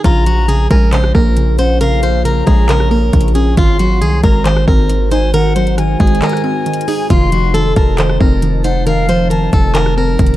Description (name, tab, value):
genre	hip hop, trap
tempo	136 BPM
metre	4/4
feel	half-time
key	Bb minor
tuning	A4 = 437 Hz
part	mellow silver concert flute	second line	0.0-10.2 s	F5 to C6	-22 LUFS	left 4 dB	tape echo
part	soft round pluck	accompaniment	0.0-10.4 s	Db3 to Eb4	-18 LUFS	right 2 dB	chorus
part	deep dark ambient pad	sustained chords	0.6-10.4 s	F3 to A5	-23 LUFS	left 1 dB	chorus, built-in reverb
part	hard-hitting 808-style bass	bass	0.0-10.4 s	F1 to C2	-14 LUFS	equal	none
part	trap drum kit	drums	0.0-10.4 s	handclaps, hi-hat, kick drum, rim click	-14 LUFS	equal	none
part	picked plugged-in swing-style acoustic guitar	melody	0.1-10.4 s	F4 to C5	-18 LUFS	equal	tape echo
room	little or no reverb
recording	dark, warm production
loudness	-10 LUFS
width	side -15 dB against mid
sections	0.0-10.4 A section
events	break 6.2-7.1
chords	0.0 Bbm7; 3.6 Ab7; 7.1 F7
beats	| 0.04 0.48 0.93 1.37 | 1.81 2.25 2.69 3.13 | 3.57 4.01 4.46 4.90 | 5.34 5.78 6.22 6.66 | 7.10 7.54 7.99 8.43 | 8.87 9.31 9.75 10.19